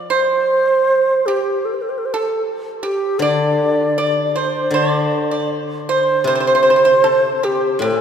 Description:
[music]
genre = chinese traditional, Chinese chamber ensemble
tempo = 78 BPM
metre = 4/4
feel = straight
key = unclear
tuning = A4 = 444 Hz
[part]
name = steel-string zither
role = accompaniment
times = 0.0-8.0 s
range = A2 to D3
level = -21 LUFS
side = left 2 dB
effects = none
[part]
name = xiao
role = melody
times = 0.1-8.0 s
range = G4 to D5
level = -16 LUFS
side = right 1 dB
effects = none
[part]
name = pipa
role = second line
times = 0.1-8.0 s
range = G4 to D5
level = -21 LUFS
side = right 3 dB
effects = none
[sound]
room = wet cathedral reverb, RT60 5.1 s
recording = recorded in a church or concert hall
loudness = -14 LUFS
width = side -8 dB against mid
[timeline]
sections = 0.0-8.0 A section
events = none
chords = none

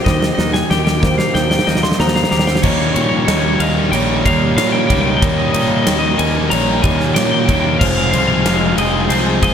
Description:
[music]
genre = post-rock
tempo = 93 BPM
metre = 4/4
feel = straight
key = unclear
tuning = A4 = 440 Hz
[part]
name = clean electric guitar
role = melody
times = 0.0-9.5 s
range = C5 to C6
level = -20 LUFS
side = left 3 dB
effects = lush chorus, digital delay
[part]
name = dark chamber string section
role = sustained chords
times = 0.0-9.5 s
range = Eb3 to Ab4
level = -26 LUFS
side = left 3 dB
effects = none
[part]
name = twangy electric guitar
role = arpeggios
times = 0.0-2.6 s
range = Eb3 to G4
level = -26 LUFS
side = left 2 dB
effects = digital delay
[part]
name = vibraphone with medium mallets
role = arpeggios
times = 0.0-9.5 s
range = C5 to Eb5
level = -24 LUFS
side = right 3 dB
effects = digital delay
[part]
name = growling fingered electric bass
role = bass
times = 0.1-9.5 s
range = F1 to Bb2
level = -20 LUFS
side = equal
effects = overdrive
[part]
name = huge arena drum kit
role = drums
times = 0.1-9.5 s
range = crash cymbal, kick drum, ride cymbal, snare drum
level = -18 LUFS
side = equal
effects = none
[part]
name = thick fuzz guitar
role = riff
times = 2.6-9.5 s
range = Eb3 to F4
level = -18 LUFS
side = left 1 dB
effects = distortion
[sound]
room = light reverb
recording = none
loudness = -12 LUFS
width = side -8 dB against mid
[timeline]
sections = 0.0-2.6 A section; 2.6-9.5 B section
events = build-up 0.0-2.6; drum fill 0.0-2.6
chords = 0.0 Cm7; 2.6 Eb7; 7.8 Fm7

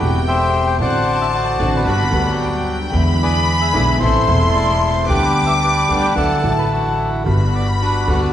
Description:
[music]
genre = tango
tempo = 111 BPM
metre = 4/4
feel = rubato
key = G major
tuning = A4 = 441 Hz
[part]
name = bandoneon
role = melody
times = 0.0-8.3 s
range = D4 to G5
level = -19 LUFS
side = left 1 dB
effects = none
[part]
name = rich studio violin section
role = second line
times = 0.0-8.3 s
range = G5 to D6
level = -22 LUFS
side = left 2 dB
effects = none
[part]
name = clear upright piano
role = accompaniment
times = 0.0-8.3 s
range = E1 to A4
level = -22 LUFS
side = right 1 dB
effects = none
[part]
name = dark chamber string section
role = stabs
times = 0.0-8.3 s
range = F#3 to G4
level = -28 LUFS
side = left 1 dB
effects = none
[part]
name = upright bass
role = bass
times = 0.0-8.3 s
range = E1 to E2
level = -19 LUFS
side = equal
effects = none
[sound]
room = wet recital hall reverb, RT60 1.8 s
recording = recorded in a church or concert hall, vinyl crackle, nothing above 10.4 kHz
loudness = -14 LUFS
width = side -11 dB against mid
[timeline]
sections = 0.0-8.3 A section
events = none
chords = 0.0 Am7; 0.8 D7/A; 1.9 Gmaj7; 2.9 E7; 4.0 Am; 5.1 G/D; 6.2 Dadd9; 7.3 Gmaj7

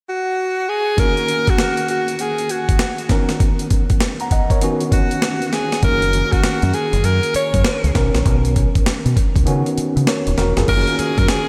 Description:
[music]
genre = R&B, new jack swing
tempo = 99 BPM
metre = 4/4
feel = swing 63% on 16ths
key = F# major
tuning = A4 = 441 Hz
[part]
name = breathy alto saxophone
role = melody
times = 0.1-11.5 s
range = F#4 to C#5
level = -23 LUFS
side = equal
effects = tape echo
[part]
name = tine electric piano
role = accompaniment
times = 1.0-11.5 s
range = D#3 to A#5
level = -25 LUFS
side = equal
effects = overdrive
[part]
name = breakbeat sampler-style drum kit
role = drums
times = 1.0-11.5 s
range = crash cymbal, hi-hat, kick drum, snare drum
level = -21 LUFS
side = equal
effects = none
[part]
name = deep dub fingered electric bass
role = bass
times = 5.8-11.3 s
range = D#1 to C#3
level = -20 LUFS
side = equal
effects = none
[sound]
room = moderate lush hall reverb, RT60 3.1 s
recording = dreamy mix soaked in reverb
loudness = -18 LUFS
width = mono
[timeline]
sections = 1.0-10.7 A section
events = kick muted 9.5-10.7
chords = 0.0 N.C.; 1.0 F#6; 3.1 Bmaj9; 5.8 F#6; 8.0 Bmaj9; 9.5 C#9sus4; 10.7 F#6

